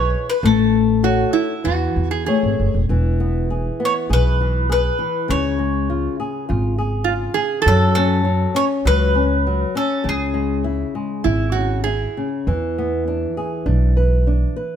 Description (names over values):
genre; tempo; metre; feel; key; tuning
fado-style ballad; 100 BPM; 4/4; rubato; E major; A4 = 440 Hz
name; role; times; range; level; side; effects
bowl-back mandolin; melody; 0.0-10.6 s; G#4 to C#5; -22 LUFS; left 1 dB; none
flamenco guitar; accompaniment; 0.0-14.8 s; C#3 to C#5; -21 LUFS; left 4 dB; none
upright bass; bass; 0.0-14.4 s; E1 to F#2; -19 LUFS; equal; none
metal-body resonator slide guitar; second line; 1.0-2.8, 7.0-12.3 s; E4 to A4; -21 LUFS; right 7 dB; none
room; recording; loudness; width
light reverb; close, detailed microphones; -16 LUFS; side -9 dB against mid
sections
0.0-2.9 A section; 2.9-14.8 B section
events
none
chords
0.4 Amaj7; 2.9 E; 5.3 C#; 7.7 F#m; 10.0 C#m; 12.5 E7